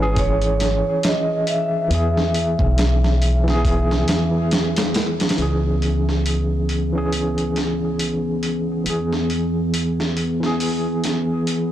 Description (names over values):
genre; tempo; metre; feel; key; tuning
trip hop; 69 BPM; 4/4; swing 58% on 16ths; C# minor; A4 = 443 Hz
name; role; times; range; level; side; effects
vibraphone with medium mallets; melody; 0.0-4.5 s; B4 to E5; -25 LUFS; equal; vintage 12-bit sampler grit, tape echo
tine electric piano; accompaniment; 0.0-11.7 s; E3 to G#4; -22 LUFS; equal; overdrive, tremolo, tape echo
upright bass; bass; 0.0-11.7 s; G#1 to E2; -22 LUFS; equal; none
dusty soul sampler-style drum kit; drums; 0.2-11.7 s; hi-hat, kick drum, snare drum; -23 LUFS; equal; overdrive, high-pass filter on snare, high-pass filter on hats, high-pass filter on kick, high-pass filter on room
warbly tape-like pad; sustained chords; 5.4-11.7 s; B3; -27 LUFS; left 1 dB; chorus, built-in reverb
room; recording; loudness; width
light reverb; blown-out, overdriven recording, overdrive; -18 LUFS; side -12 dB against mid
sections
0.0-5.4 A section; 5.4-11.7 B section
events
filter sweep on tine electric piano 0.0-5.4; filter sweep on ambient pad 5.4-11.7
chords
0.0 C#m; 1.9 E; 5.4 C#m; 8.9 E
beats
0.17 1.03 | 1.91 2.77 3.64 4.51 | 5.38 6.25 7.12 7.99 | 8.86 9.73 10.60 11.47